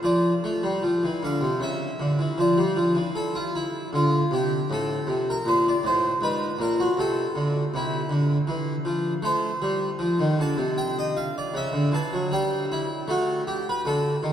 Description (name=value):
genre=classical, baroque-style suite movement for harpsichord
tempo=78 BPM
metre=3/4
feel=rubato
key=D minor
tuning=A4 = 435 Hz
part: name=harpsichord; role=solo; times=0.0-14.3 s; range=G#2 to A5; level=-22 LUFS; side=equal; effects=none
room=wet cathedral reverb, RT60 6.8 s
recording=none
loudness=-22 LUFS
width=side -9 dB against mid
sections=0.0-14.3 A section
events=none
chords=0.0 Dm/F; 1.6 C#m; 2.4 Dm; 4.7 Am; 6.2 G#m9; 7.0 Am/C; 9.2 Adim; 11.5 A7/C#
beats=| 0.02 0.81 1.61 | 2.39 3.16 3.94 | 4.71 5.46 6.21 | 6.98 7.74 8.47 | 9.22 9.98 10.75 | 11.52 12.30 13.07 | 13.85